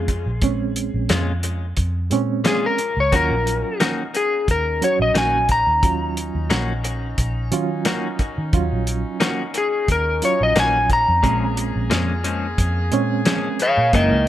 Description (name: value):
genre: straight-eighth soul blues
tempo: 89 BPM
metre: 4/4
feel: swing 54% on 16ths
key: Bb minor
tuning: A4 = 440 Hz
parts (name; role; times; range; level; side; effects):
- electric slide guitar; melody; 0.0-14.3 s; Ab4 to Bb5; -20 LUFS; left 2 dB; plate reverb
- bright reed electric piano; accompaniment; 0.0-14.3 s; Gb3 to Gb4; -24 LUFS; right 7 dB; overdrive, fast tremolo
- vintage muted fingered electric bass; bass; 0.0-14.3 s; Gb1 to Eb3; -23 LUFS; equal; none
- cloth-damped thuddy drum kit; drums; 0.1-14.1 s; hi-hat, kick drum, snare drum; -22 LUFS; equal; none
- direct-recorded clean electric guitar; stabs; 1.1-14.2 s; Gb2 to Gb4; -26 LUFS; left 4 dB; spring reverb, digital delay
- brilliant horn section; sustained chords; 3.1-14.3 s; Fb3 to Ab4; -32 LUFS; left 1 dB; none
room: moderate club reverb, RT60 0.8 s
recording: none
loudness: -18 LUFS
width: side -12 dB against mid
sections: 0.0-14.3 A section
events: electric slide guitar solo 0.0-14.3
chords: 0.0 Bbm7; 3.1 Ebm7; 11.2 Bbm7